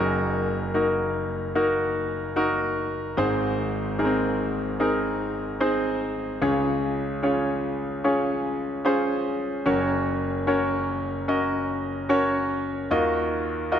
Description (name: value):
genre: pop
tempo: 74 BPM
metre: 4/4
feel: straight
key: Db major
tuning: A4 = 441 Hz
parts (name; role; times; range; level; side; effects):
- bright concert grand piano; solo; 0.0-13.8 s; Gb1 to Eb5; -22 LUFS; equal; none
room: moderate concert hall reverb, RT60 2.3 s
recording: none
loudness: -23 LUFS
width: side -9 dB against mid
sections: 0.0-13.8 A section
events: none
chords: 0.0 Ebm/Gb; 3.2 Ab; 6.4 Db; 9.7 Gb; 12.9 Ebmadd9